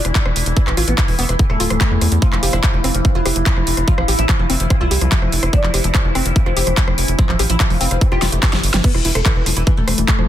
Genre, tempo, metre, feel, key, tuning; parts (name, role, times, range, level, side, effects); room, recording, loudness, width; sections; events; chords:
psychedelic trance; 145 BPM; 4/4; straight; A4 = 440 Hz
oud; melody; 0.0-10.3 s; E3 to G4; -24 LUFS; left 2 dB; phaser, sidechain pumping, digital delay
overtone-sweeping drone; sustained chords; 0.0-10.3 s; E3 to E4; -25 LUFS; left 1 dB; chorus, built-in reverb, sidechain pumping
woody wave-folded pluck; riff; 0.0-10.3 s; D3 to G4; -25 LUFS; moving between left 3 dB and right 4 dB; chorus, auto-pan, sidechain pumping, dub echo
tight sequencer bass; bass; 0.0-10.3 s; D1 to E2; -19 LUFS; equal
big-room dance drum kit; drums; 0.0-10.3 s; crash cymbal, handclaps, hi-hat, rim click, snare drum; -21 LUFS; equal; overdrive
electronic kick drum; drums; 0.2-10.2 s; -16 LUFS; equal
little or no reverb; dense, heavily limited modern master; -14 LUFS; side -12 dB against mid
0.0-8.8 A section; 8.8-10.3 B section
drum fill 8.2-8.8; drop 8.8-10.3
0.0 E5; 2.2 F5; 8.8 E5